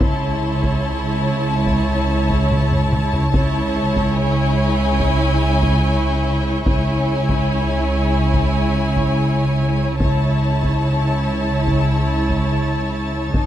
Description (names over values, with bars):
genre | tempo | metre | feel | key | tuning
cinematic, suspense film score | 72 BPM | 4/4 | straight | unclear | A4 = 436 Hz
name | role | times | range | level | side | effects
rich studio violin section | melody | 0.0-13.5 s | G#5 to A5 | -26 LUFS | left 4 dB | none
rich studio violin section | second line | 0.0-13.5 s | C#5 | -26 LUFS | equal | none
rich studio viola section | accompaniment | 0.0-13.5 s | Eb4 to E4 | -25 LUFS | equal | none
rich studio cello section | bass | 0.0-13.5 s | F2 to C#3 | -24 LUFS | right 2 dB | none
rich studio double bass section | bass | 0.0-13.5 s | F1 to C#2 | -21 LUFS | right 2 dB | none
metallic inharmonic drone | drone | 0.1-13.5 s | C#2 to F2 | -24 LUFS | left 1 dB | none
solo taiko drums | drums | 0.0-13.5 s | none | -23 LUFS | equal | none
rich studio violin section | texture | 0.0-13.5 s | A5 to A6 | -35 LUFS | left 1 dB | none
room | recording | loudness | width
moderate scoring stage reverb, RT60 1.6 s | none | -16 LUFS | side -11 dB against mid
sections
0.0-13.5 A section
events
drum fill 2.5-3.3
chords
0.0 A/C#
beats
| 0.01 0.84 1.68 2.51 | 3.34 4.18 5.01 5.84 | 6.68 7.51 8.34 9.18 | 10.01 10.84 11.68 12.51 | 13.34